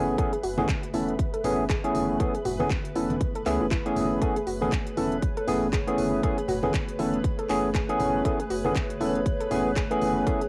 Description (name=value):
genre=deep house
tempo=119 BPM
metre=4/4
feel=swing 58% on 16ths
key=F# minor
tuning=A4 = 442 Hz
part: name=warbly tape-like pad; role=sustained chords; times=0.0-10.5 s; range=A3 to E5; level=-37 LUFS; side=equal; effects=chorus, built-in reverb, phaser, sidechain pumping
part: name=barky tine electric piano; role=stabs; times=0.0-10.4 s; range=E3 to A4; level=-28 LUFS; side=equal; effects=analog chorus, sidechain pumping, analog delay
part: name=warm sub bass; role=bass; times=0.0-10.2 s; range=E1 to C#2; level=-41 LUFS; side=equal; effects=sidechain pumping
part: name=granular cloud pad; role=texture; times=0.0-10.5 s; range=B4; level=-41 LUFS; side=equal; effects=built-in reverb, sidechain pumping
part: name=soft round pluck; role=arpeggios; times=0.2-10.5 s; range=E4 to E5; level=-35 LUFS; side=equal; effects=chorus, cassette tape, sidechain pumping, analog delay
part: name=electronic kick drum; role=drums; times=0.2-10.4 s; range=none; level=-30 LUFS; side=equal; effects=small room reverb, cassette tape
part: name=house drum kit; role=drums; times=0.2-10.5 s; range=handclaps, hi-hat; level=-41 LUFS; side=equal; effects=small room reverb, cassette tape
part: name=congas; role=percussion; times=0.6-10.1 s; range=none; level=-38 LUFS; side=equal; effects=sidechain pumping on perc
room=moderate booth ambience, RT60 0.2 s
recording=home recording on cassette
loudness=-26 LUFS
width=mono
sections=0.0-10.5 A section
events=none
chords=0.0 F#m11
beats=| 0.18 0.69 1.19 1.70 | 2.20 2.70 3.21 3.71 | 4.22 4.72 5.22 5.73 | 6.23 6.74 7.24 7.75 | 8.25 8.75 9.26 9.76 | 10.27